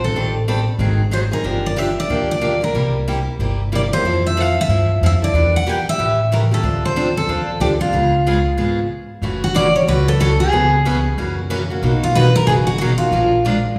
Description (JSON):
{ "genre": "acoustic string swing (jazz manouche)", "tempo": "185 BPM", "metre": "4/4", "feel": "swing 61% on 8ths", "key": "unclear", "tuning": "A4 = 440 Hz", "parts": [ { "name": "picked steel-string acoustic guitar", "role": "melody", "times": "0.0-13.8 s", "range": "F4 to G5", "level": "-21 LUFS", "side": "equal", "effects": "none" }, { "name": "picked steel-string acoustic guitar", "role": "accompaniment", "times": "0.0-13.6 s", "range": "B2 to A#4", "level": "-23 LUFS", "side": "equal", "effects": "none" }, { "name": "upright bass", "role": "bass", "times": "0.0-13.8 s", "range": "E#1 to G2", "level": "-22 LUFS", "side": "equal", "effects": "none" } ], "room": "wet recital hall reverb, RT60 1.5 s", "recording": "recorded in a church or concert hall, studio ambience", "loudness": "-17 LUFS", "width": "mono", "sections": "0.0-9.2 A section; 9.2-13.8 B section", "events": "stop 8.9-9.2", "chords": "0.1 Am7b5; 0.8 G#7; 1.4 Gm7; 2.7 C7; 4.0 Fmaj7; 5.3 Em7b5; 6.0 A7; 6.6 Dm7; 7.9 C#7; 9.2 F#m7; 10.5 C#m7; 11.2 F#7; 11.8 Bmaj7; 13.1 A#7" }